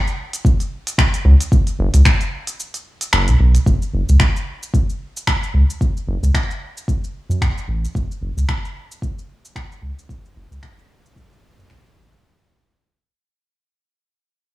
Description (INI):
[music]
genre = organic downtempo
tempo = 112 BPM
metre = 4/4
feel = swing 56% on 16ths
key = F# minor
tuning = A4 = 441 Hz
[part]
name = organic electronic drum kit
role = drums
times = 0.1-12.2 s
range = finger snaps, hi-hat, shaker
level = -23 LUFS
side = equal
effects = overdrive, soft clipping on snare
[part]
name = electronic kick drum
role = drums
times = 0.4-11.8 s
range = none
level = -18 LUFS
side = equal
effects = overdrive
[part]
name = round analog bass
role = bass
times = 1.2-12.1 s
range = F#1 to F#2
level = -13 LUFS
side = equal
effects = sidechain pumping
[sound]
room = little or no reverb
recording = blown-out, overdriven recording, overdrive, studio ambience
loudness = -15 LUFS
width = side -17 dB against mid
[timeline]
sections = 0.0-3.7 A section; 3.7-12.2 B section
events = kick drops out 2.6-3.7; fade-out 3.7-12.2; filter sweep on analog synth bass 3.7-12.2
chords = none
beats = 0.45 0.99 | 1.52 2.06 2.59 3.13 | 3.66 4.20 4.74 5.27 | 5.81 6.34 6.88 7.41 | 7.95 8.49 9.02 9.56 | 10.09 10.63 11.16 11.70